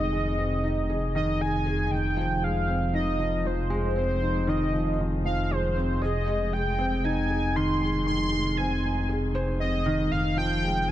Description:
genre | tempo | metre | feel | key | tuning
piano and strings electronica | 117 BPM | 4/4 | straight | F minor | A4 = 440 Hz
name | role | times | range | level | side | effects
warm velvety synth lead | melody | 0.0-10.9 s | C5 to C6 | -29 LUFS | equal | chorus
felt-muted upright piano | riff | 0.0-10.9 s | Eb3 to C5 | -28 LUFS | equal | tape echo
dark detuned saw bass | bass | 0.0-10.9 s | F1 | -29 LUFS | equal | none
room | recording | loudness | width
light reverb, small room ambience | nothing above 10.9 kHz | -24 LUFS | side -13 dB against mid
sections
0.0-10.9 A section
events
none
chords
0.0 Fm7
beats
0.38 0.89 1.40 | 1.92 2.43 2.94 3.45 | 3.97 4.48 4.99 5.50 | 6.02 6.53 7.04 7.56 | 8.07 8.58 9.10 9.61 | 10.12 10.63

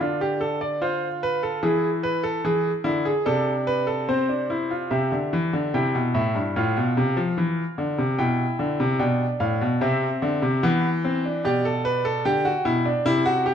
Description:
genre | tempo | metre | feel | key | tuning
classical, baroque-style 3-part fugue for grand piano | 74 BPM | 4/4 | straight | A minor, C major from 4.9 s | A4 = 442 Hz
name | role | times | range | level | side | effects
clear baby grand piano | solo | 0.0-13.5 s | G2 to G5 | -21 LUFS | equal | none
room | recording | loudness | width
wet stone room reverb, RT60 1.3 s | dark, warm production | -21 LUFS | side -8 dB against mid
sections
0.0-4.9 A section; 4.9-13.5 B section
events
none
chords
0.0 Dm; 1.6 E7; 3.3 Am/C; 4.9 C; 6.6 F5; 8.2 G7/B; 9.8 C; 11.4 G/B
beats
0.00 0.81 | 1.63 2.44 3.26 4.09 | 4.91 5.74 6.55 7.37 | 8.18 9.00 9.81 10.62 | 11.44 12.25 13.05

